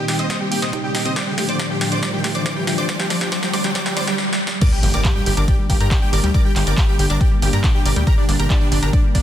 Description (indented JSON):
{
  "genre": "uplifting trance",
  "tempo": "139 BPM",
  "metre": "4/4",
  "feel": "straight",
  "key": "G minor",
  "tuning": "A4 = 441 Hz",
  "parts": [
    { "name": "dense compressed supersaw", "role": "melody", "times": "0.0-9.2 s", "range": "D4 to Eb5", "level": "-26 LUFS", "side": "equal", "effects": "sidechain pumping, tape echo" },
    { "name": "plucky unison lead", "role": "second line", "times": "0.0-9.2 s", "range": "D5 to Eb6", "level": "-29 LUFS", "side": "right 1 dB", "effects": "sidechain pumping, tape echo" },
    { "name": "lush unison pad", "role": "sustained chords", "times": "0.0-9.2 s", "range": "A2 to G4", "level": "-26 LUFS", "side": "left 1 dB", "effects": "chorus, sidechain pumping" },
    { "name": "analog pluck", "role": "arpeggios", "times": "0.0-9.2 s", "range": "G3 to G5", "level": "-28 LUFS", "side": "right 2 dB", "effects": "chorus, sidechain pumping, tape echo" },
    { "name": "riser and impact", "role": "sound effects", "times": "0.0-6.3 s", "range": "none", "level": "-26 LUFS", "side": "equal", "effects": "none" },
    { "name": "punchy analog drum machine", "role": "drums", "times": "0.1-9.2 s", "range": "crash cymbal, handclaps, hi-hat, snare drum", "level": "-24 LUFS", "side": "equal", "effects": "high-pass filter on hats, high-pass filter on snare, high-pass filter on cymbals, high-pass filter on room" },
    { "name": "electronic kick drum", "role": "drums", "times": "0.3-9.2 s", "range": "none", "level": "-17 LUFS", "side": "equal", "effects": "high-pass filter on kick, high-pass filter on room" },
    { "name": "gritty driven synth bass", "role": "bass", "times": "4.8-9.2 s", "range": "G1 to G2", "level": "-19 LUFS", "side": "equal", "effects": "sidechain pumping" }
  ],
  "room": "light reverb",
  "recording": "dense, heavily limited modern master",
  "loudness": "-16 LUFS",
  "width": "side -11 dB against mid",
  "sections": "0.0-4.6 A section; 4.6-9.2 B section",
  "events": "build-up 0.0-4.6; drum fill 0.0-4.2, 4.2-4.6; riser 0.0-4.2; filter sweep on synth arpeggio sound 0.0-4.6; filter sweep on digital synth lead 0.0-4.6; drop 4.6-9.2; impact 4.6-6.3",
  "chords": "0.0 Cm7; 1.2 Dm; 4.6 Gm"
}